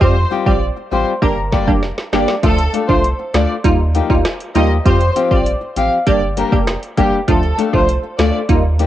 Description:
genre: dancehall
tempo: 99 BPM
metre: 4/4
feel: straight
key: D phrygian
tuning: A4 = 440 Hz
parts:
  - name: warm studio violin section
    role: melody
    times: 0.0-8.3 s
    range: G4 to F5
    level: -20 LUFS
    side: equal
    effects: cassette tape
  - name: wavetable chord stab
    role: accompaniment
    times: 0.0-8.6 s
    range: F3 to G4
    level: -18 LUFS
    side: right 1 dB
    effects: none
  - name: round analog bass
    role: bass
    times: 0.0-8.9 s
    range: F1 to F2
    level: -18 LUFS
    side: right 1 dB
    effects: none
  - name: deep house drum kit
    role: drums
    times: 0.0-8.9 s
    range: hi-hat, kick drum, rim click, snare drum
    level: -18 LUFS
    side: right 1 dB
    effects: cassette tape
  - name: nylon-string guitar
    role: arpeggios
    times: 0.3-8.9 s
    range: F3 to A4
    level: -21 LUFS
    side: left 7 dB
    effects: analog delay
room: light reverb, digital ambience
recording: home recording on cassette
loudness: -13 LUFS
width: side -12 dB against mid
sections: 0.0-8.9 A section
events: drum fill 1.8-2.4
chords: 0.0 Fsus2; 1.2 Gm; 2.4 Dm; 3.6 Ebadd9; 4.9 Fsus2; 6.1 Gm; 7.3 Dm

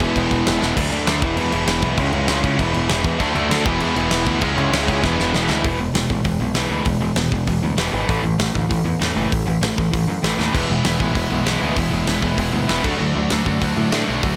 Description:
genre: punk rock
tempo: 196 BPM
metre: 4/4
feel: straight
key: E mixolydian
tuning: A4 = 440 Hz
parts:
  - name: distorted electric guitar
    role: riff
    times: 0.0-14.4 s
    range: E2 to D4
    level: -26 LUFS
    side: equal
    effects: distortion
  - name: sludgy distorted guitar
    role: riff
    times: 0.0-14.4 s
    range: A2 to F#4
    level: -26 LUFS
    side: equal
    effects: overdrive
  - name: tight distorted guitar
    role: riff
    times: 0.0-0.8, 3.2-5.6, 10.5-14.4 s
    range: C#3 to F#4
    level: -26 LUFS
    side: equal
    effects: distortion
  - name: growling picked electric bass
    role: bass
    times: 0.0-14.3 s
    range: E1 to A2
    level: -27 LUFS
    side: equal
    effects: overdrive
  - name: big rock drum kit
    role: drums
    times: 0.0-14.3 s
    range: crash cymbal, hi-hat, kick drum, snare drum, splash cymbal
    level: -26 LUFS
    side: equal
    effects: none
room: little or no reverb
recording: none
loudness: -19 LUFS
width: mono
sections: 0.8-5.6 A section; 5.6-14.4 B section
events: drum fill 0.6, 5.0-5.6, 10.4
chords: 0.0 E; 0.8 D; 1.2 E; 2.0 C#m; 2.6 E; 3.2 D; 3.7 E; 4.4 C#m; 5.0 E; 8.1 A5; 10.5 E; 12.8 D

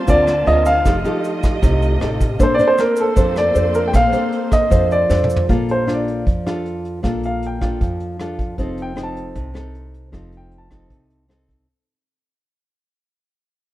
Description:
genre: bossa nova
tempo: 155 BPM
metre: 4/4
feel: straight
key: Bb major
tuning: A4 = 440 Hz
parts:
  - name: clear baby grand piano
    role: melody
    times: 0.0-11.1 s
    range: A4 to A5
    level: -18 LUFS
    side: equal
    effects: none
  - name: nylon-string guitar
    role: accompaniment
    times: 0.0-11.7 s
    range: C3 to C5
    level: -21 LUFS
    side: left 1 dB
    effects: none
  - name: warm symphonic string section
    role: sustained chords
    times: 0.0-5.5 s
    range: A3 to A5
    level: -26 LUFS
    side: right 2 dB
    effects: none
  - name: upright bass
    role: bass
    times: 0.1-11.6 s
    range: F1 to F2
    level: -23 LUFS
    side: equal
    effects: none
  - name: vintage brush drum kit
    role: drums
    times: 0.1-11.6 s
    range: hi-hat, kick drum, rim click, snare drum, toms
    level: -20 LUFS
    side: equal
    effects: none
  - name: tube shaker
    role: percussion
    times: 0.1-5.5 s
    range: none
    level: -43 LUFS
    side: right 2 dB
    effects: none
room: light reverb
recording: rough home demo mix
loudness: -15 LUFS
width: side -15 dB against mid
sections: 0.0-5.5 A section; 5.5-11.7 B section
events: drum fill 5.1-5.5; fade-out 5.5-11.7; grand piano solo 5.5-11.7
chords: 0.0 Gm11 (rootless); 0.9 F9; 2.4 Bbmaj9; 5.5 Bbmaj7; 8.6 F7

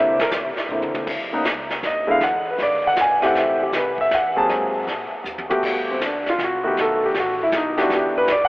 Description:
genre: jazz piano trio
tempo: 158 BPM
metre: 3/4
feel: swing 66% on 8ths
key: G major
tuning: A4 = 439 Hz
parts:
  - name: warm grand piano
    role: melody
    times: 0.0-8.5 s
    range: C#3 to A5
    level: -19 LUFS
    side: equal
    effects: none
  - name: upright bass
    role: bass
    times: 0.0-8.5 s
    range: A1 to Bb2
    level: -40 LUFS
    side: equal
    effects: none
  - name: vintage brush drum kit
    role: drums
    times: 0.2-8.5 s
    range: brushed snare drum, crash cymbal, hi-hat, kick drum, snare drum, toms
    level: -26 LUFS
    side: equal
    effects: none
room: wet huge ambient reverb, RT60 7.8 s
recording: in a vast, echoing space, telephone sound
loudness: -18 LUFS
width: side -21 dB against mid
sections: 0.0-5.6 A section; 5.6-8.5 B section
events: drum fill 0.7-1.1, 5.3-5.6; grand piano solo 5.6-8.5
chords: 0.0 C9; 1.1 Badd9; 2.2 E5; 3.4 Am7; 4.5 Ab9; 5.6 Gmaj9; 6.8 B7; 7.9 Em7

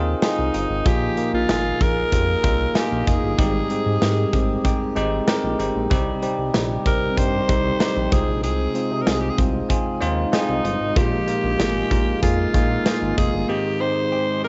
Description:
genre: 1980s-style pop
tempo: 95 BPM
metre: 4/4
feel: straight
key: unclear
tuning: A4 = 441 Hz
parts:
  - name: bell-like tine electric piano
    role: accompaniment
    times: 0.0-14.5 s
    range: Ab2 to Bb4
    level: -26 LUFS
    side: equal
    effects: shimmer reverb
  - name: direct-recorded clean electric guitar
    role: riff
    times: 0.0-14.5 s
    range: Eb3 to Ab4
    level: -32 LUFS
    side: equal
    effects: subtle chorus, shimmer reverb
  - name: chorused synth bass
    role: bass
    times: 0.0-13.5 s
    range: F1 to C3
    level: -28 LUFS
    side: equal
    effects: none
  - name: raspy alto saxophone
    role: melody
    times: 0.2-14.5 s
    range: Eb4 to C5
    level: -27 LUFS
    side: equal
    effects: cassette tape, shimmer reverb
  - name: big rock drum kit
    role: drums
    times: 0.2-13.3 s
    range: hi-hat, kick drum, snare drum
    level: -25 LUFS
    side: equal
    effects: cassette tape
room: moderate spring reverb, RT60 2.1 s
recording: home recording on cassette, nothing above 7.8 kHz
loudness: -21 LUFS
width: mono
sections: 0.0-14.5 A section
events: none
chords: 0.0 Fm7; 0.9 Bb7sus4; 3.4 Abmaj7; 5.9 Cm; 8.1 Fm7; 11.0 Bb7sus4; 13.5 Abmaj7

